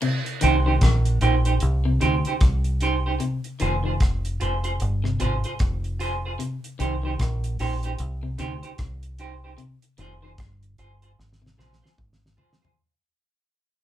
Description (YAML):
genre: roots reggae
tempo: 75 BPM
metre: 4/4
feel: swing 61% on 16ths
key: C minor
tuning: A4 = 440 Hz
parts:
  - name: electric guitar at the edge of break-up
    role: arpeggios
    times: 0.0-11.8 s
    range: C3 to Eb3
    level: -29 LUFS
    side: left 4 dB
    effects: none
  - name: damped 70s drum kit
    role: drums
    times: 0.0-12.8 s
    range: crash cymbal, hi-hat, kick drum, rim click, snare drum, toms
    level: -25 LUFS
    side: equal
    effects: none
  - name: semi-hollow electric guitar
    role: accompaniment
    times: 0.4-12.7 s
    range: Eb4 to C5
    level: -26 LUFS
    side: right 5 dB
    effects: none
  - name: deep dub fingered electric bass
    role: bass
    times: 0.4-12.4 s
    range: F1 to D2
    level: -24 LUFS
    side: equal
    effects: none
room: wet small room reverb, RT60 0.5 s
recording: band playing live in one room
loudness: -21 LUFS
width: side -12 dB against mid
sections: 0.0-12.8 A section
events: fade-out 0.0-12.8; drum fill 11.2-12.8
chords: 0.0 Cm; 3.2 Fm; 6.4 Cm; 9.6 Fm